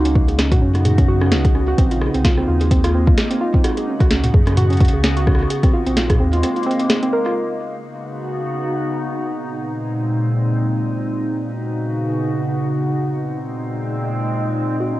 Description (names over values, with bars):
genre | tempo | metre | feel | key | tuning
IDM | 129 BPM | 4/4 | swing 56% on 16ths | unclear | A4 = 441 Hz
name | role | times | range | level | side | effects
glassy FM pad | sustained chords | 0.0-15.0 s | Bb2 to Gb4 | -22 LUFS | equal | ensemble chorus, built-in reverb, vintage 12-bit sampler grit, sidechain pumping, cassette tape
warm sub bass | bass | 0.0-6.4 s | Bb1 to Gb2 | -19 LUFS | equal | none
warbly dusty pluck | arpeggios | 0.1-7.4, 14.8-15.0 s | C4 to Bb4 | -21 LUFS | right 1 dB | chorus, cassette tape, analog delay
booming analog drum machine | drums | 0.1-7.5 s | crash cymbal, hi-hat, rim click, snare drum, toms | -22 LUFS | equal | low-pass filter on snare, cassette tape, low-pass filter on hats, low-pass filter on toms, low-pass filter on cymbals, low-pass filter on room
electronic kick drum | drums | 0.2-6.2 s | none | -15 LUFS | equal | cassette tape
room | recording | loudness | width
moderate booth ambience, RT60 0.2 s | home recording on cassette | -16 LUFS | side -16 dB against mid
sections
0.0-7.4 A section; 7.4-15.0 B section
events
none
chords
0.0 Db9sus4; 1.8 Bb9sus4; 3.6 Db9sus4; 5.5 Bb9sus4; 7.4 Db9sus4; 9.2 Bb9sus4; 11.1 Db9sus4; 12.9 Bb9sus4